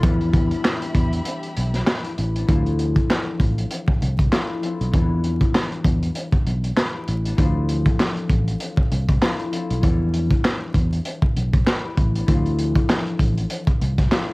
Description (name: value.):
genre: hip hop, boom-bap hip-hop.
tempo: 98 BPM.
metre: 4/4.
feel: swing 57% on 16ths.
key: unclear.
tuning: A4 = 440 Hz.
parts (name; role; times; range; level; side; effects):
concert harp; accompaniment; 0.0-14.3 s; E3 to B4; -28 LUFS; left 3 dB; high-pass filter, low-pass filter, cassette tape.
warm studio string section; sustained chords; 0.0-2.5 s; D4 to B5; -35 LUFS; equal; high-pass filter, low-pass filter, cassette tape.
fingered electric bass; bass; 0.0-14.1 s; A1 to E2; -22 LUFS; equal; transformer saturation.
crunchy breakbeat drum kit; drums; 0.0-14.3 s; handclaps, hi-hat, kick drum, snare drum; -20 LUFS; equal; none.
room: little or no reverb.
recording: home recording on cassette, vinyl crackle.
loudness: -18 LUFS.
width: side -24 dB against mid.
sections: 0.0-2.5 A section; 2.5-14.3 B section.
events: break 1.3-2.5.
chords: 0.0 Em7; 2.5 Dm7; 4.9 Em7; 7.4 Dm7; 9.8 Em7; 12.3 Dm7.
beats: | 0.04 0.65 1.26 1.87 | 2.49 3.10 3.71 4.32 | 4.93 5.55 6.16 6.77 | 7.38 8.00 8.61 9.22 | 9.83 10.45 11.06 11.67 | 12.28 12.89 13.51 14.12.